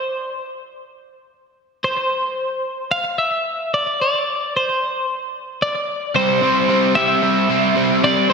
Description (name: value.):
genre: rock.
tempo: 112 BPM.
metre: 4/4.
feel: straight.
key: C major.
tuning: A4 = 439 Hz.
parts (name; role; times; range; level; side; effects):
twelve-string electric guitar; melody; 0.0-8.3 s; C5 to F5; -19 LUFS; left 1 dB; slapback echo.
overdriven electric guitar; riff; 6.1-8.3 s; C3 to C4; -16 LUFS; right 1 dB; slapback echo.
room: wet lush hall reverb, RT60 2.5 s.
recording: big arena sound.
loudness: -17 LUFS.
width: side -5 dB against mid.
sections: 0.0-6.1 A section; 6.1-8.3 B section.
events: none.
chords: 0.0 N.C.; 6.1 C.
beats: 0.23 0.77 1.31 | 1.84 2.38 2.92 3.46 | 4.00 4.54 5.07 5.61 | 6.15 6.68 7.22 7.76 | 8.29.